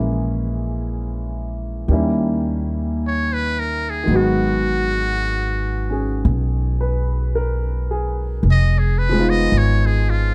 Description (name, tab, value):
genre	jazz ballad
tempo	55 BPM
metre	4/4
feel	swing 66% on 8ths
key	unclear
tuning	A4 = 438 Hz
part	warm grand piano	accompaniment	0.0-10.3 s	Eb3 to Cb5	-26 LUFS	equal	none
part	upright bass	bass	0.0-10.3 s	F1 to Eb2	-22 LUFS	equal	none
part	trumpet with metal mute	melody	3.1-10.3 s	F4 to Eb5	-25 LUFS	equal	none
room	little or no reverb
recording	dark, warm production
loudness	-20 LUFS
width	mono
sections	0.0-10.3 A section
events	muted trumpet solo 0.0-10.3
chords	0.0 Bbm7b5; 1.9 Eb7b9; 4.1 Abm7; 8.4 Fm7b5